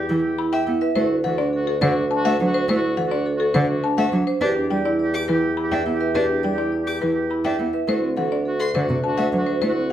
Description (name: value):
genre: classical, minimalist pattern music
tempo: 104 BPM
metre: 3/4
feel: straight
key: unclear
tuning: A4 = 436 Hz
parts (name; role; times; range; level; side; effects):
- buzzing marimba with hard mallets; melody; 0.0-9.9 s; G4 to B5; -26 LUFS; left 6 dB; none
- warm oboe; second line; 0.0-9.9 s; F#4 to G4; -30 LUFS; equal; none
- dark bassoon; bass; 0.0-9.9 s; D2 to E2; -26 LUFS; equal; none
- rich cello; accompaniment; 0.1-9.9 s; C3 to D4; -24 LUFS; equal; none
- vibraphone with medium mallets; arpeggios; 0.1-9.9 s; C4 to E5; -24 LUFS; right 4 dB; none
- rich violin; arpeggios; 0.5-9.3 s; E5 to D6; -32 LUFS; left 1 dB; none
room: wet large studio reverb, RT60 0.9 s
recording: heard from further back in the room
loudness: -19 LUFS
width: side -11 dB against mid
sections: 0.0-9.9 A section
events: none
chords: 0.0 Em; 1.0 D7; 4.4 Em; 7.9 D7